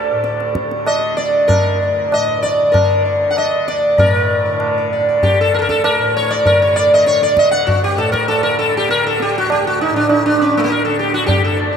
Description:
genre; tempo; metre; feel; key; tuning
indian classical, Hindustani; 98 BPM; 4/4; straight; unclear; A4 = 440 Hz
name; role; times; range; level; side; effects
sitar; melody; 0.0-11.8 s; A3 to F#5; -14 LUFS; equal; slapback echo
tanpura; drone; 0.0-11.8 s; D2 to D3; -25 LUFS; equal; none
tabla; percussion; 0.2-11.5 s; none; -20 LUFS; right 1 dB; none
room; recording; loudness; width
wet huge ambient reverb, RT60 8.6 s; in a vast, echoing space; -13 LUFS; side -7 dB against mid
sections
0.0-4.0 A section; 4.0-11.8 B section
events
speeding up 0.0-11.8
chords
none

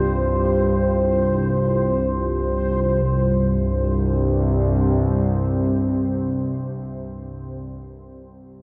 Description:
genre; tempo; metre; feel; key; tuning
dark ambient drone; free time; none; none; unclear; A4 = 440 Hz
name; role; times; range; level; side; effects
deep dark ambient pad; sustained chords; 0.0-7.7 s; C3 to C5; -27 LUFS; equal; chorus, built-in reverb
analog drone; drone; 0.0-7.8 s; C2 to G2; -24 LUFS; equal; chorus
bubbling stepped-filter texture; texture; 0.0-3.1 s; C5; -31 LUFS; equal; chorus, built-in reverb
room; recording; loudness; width
wet cathedral reverb, RT60 7.2 s; in a vast, echoing space; -21 LUFS; mono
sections
0.0-3.0 A section; 3.0-6.9 B section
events
none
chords
0.0 Fsus2/C; 3.0 C5

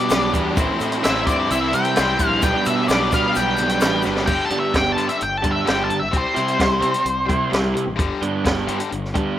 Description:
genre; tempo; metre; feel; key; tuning
indie rock; 129 BPM; 4/4; straight; G major; A4 = 438 Hz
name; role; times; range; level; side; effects
octave-fuzz lead guitar; melody; 0.0-7.5 s; C5 to A5; -22 LUFS; left 1 dB; distortion, digital delay
phased string machine; sustained chords; 0.0-4.3 s; B4 to E6; -38 LUFS; right 1 dB; none
overdriven electric guitar; riff; 0.0-9.4 s; G2 to C5; -25 LUFS; left 6 dB; none
raw garage guitar; riff; 0.0-9.4 s; A2 to G4; -23 LUFS; right 4 dB; overdrive, wide subtle chorus, digital delay
fuzz picked electric bass; bass; 0.0-9.4 s; G1 to C3; -27 LUFS; equal; overdrive
compact cocktail drum kit; drums; 0.1-9.3 s; crash cymbal, hi-hat, kick drum, snare drum; -23 LUFS; equal; none
tube shaker; percussion; 0.1-4.1 s; none; -38 LUFS; left 7 dB; none
room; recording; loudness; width
light reverb; rough home demo mix; -17 LUFS; side -11 dB against mid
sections
0.0-4.3 A section; 4.3-9.4 B section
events
drum fill 4.0; lead electric guitar solo 4.3-9.4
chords
0.0 G/B; 0.6 Am; 1.5 C6; 2.4 G/B; 4.3 G; 6.1 C; 8.0 G

